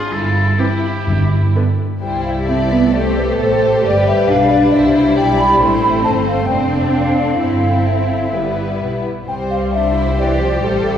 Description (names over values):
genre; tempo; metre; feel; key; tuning
quick classical-period movement for symphony orchestra; 132 BPM; 4/4; rubato; C major; A4 = 442 Hz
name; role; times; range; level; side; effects
rich studio violin section; melody; 0.0-11.0 s; E4 to D5; -26 LUFS; left 4 dB; none
clear oboe; second line; 0.0-1.6 s; F4 to A4; -23 LUFS; left 1 dB; none
rich studio violin section; second line; 0.0-11.0 s; B3 to A4; -25 LUFS; left 2 dB; none
warm studio cello section; bass; 0.1-11.0 s; G2 to A4; -20 LUFS; equal; none
warm studio double bass section; bass; 0.1-11.0 s; F1 to C2; -20 LUFS; right 1 dB; none
rich studio viola section; accompaniment; 0.6-11.0 s; D3 to C4; -20 LUFS; right 1 dB; none
timpani; percussion; 1.1-1.7 s; G2; -21 LUFS; equal; none
mellow hollow small flute group; second line; 2.0-11.0 s; B4 to C6; -18 LUFS; left 1 dB; none
room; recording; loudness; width
wet scoring stage reverb, RT60 2.0 s; heard from further back in the room; -13 LUFS; side -9 dB against mid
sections
0.0-2.0 A section; 2.0-11.0 B section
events
none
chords
0.1 C/G (rootless); 1.1 N.C.; 2.0 C; 3.8 G; 4.7 C; 5.6 Am; 6.5 Dm7/F; 7.4 C/G; 8.3 G; 9.3 C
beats
| 0.11 0.59 1.07 1.55 | 2.02 2.48 2.94 3.39 | 3.84 4.29 4.74 5.18 | 5.62 6.06 6.51 6.96 | 7.42 7.88 8.34 8.81 | 9.27 9.73 10.18 10.63